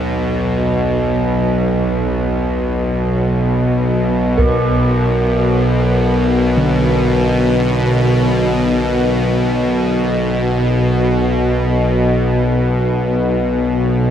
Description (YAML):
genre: dark ambient drone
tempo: free time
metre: none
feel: none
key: unclear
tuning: A4 = 440 Hz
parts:
  - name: gamelan-type bossed gongs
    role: arpeggios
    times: 0.0-13.1 s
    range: D#2 to D3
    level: -26 LUFS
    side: left 1 dB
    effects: none
  - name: bowed-like drone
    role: drone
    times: 0.0-14.1 s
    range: B1 to B2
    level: -14 LUFS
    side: equal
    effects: built-in reverb
  - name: taiko ensemble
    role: percussion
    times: 4.4-4.6 s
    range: none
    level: -18 LUFS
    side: equal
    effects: low-pass filter on perc
  - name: bronze singing bowl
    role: texture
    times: 4.4-14.1 s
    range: A#4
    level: -25 LUFS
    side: right 2 dB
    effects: none
room: wet plate reverb, RT60 2.7 s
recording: echo-heavy mix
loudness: -13 LUFS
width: side -9 dB against mid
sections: 0.0-14.1 A section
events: fade-in on drum 0.0-14.1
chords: 0.0 B; 4.4 Bmmaj7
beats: free time